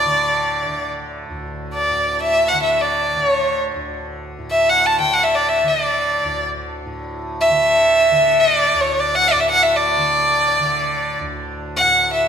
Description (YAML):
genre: indian classical, Hindustani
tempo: free time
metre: none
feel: none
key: unclear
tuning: A4 = 440 Hz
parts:
  - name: rich violin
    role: melody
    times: 0.0-12.3 s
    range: C#5 to A5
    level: -15 LUFS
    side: equal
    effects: none
  - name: tanpura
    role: drone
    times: 0.0-12.3 s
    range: D2 to D3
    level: -26 LUFS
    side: equal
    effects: none
room: moderate scoring stage reverb, RT60 1.7 s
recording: minimal, uncompressed stereo recording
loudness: -15 LUFS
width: side -8 dB against mid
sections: 0.0-12.3 A section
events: none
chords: none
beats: free time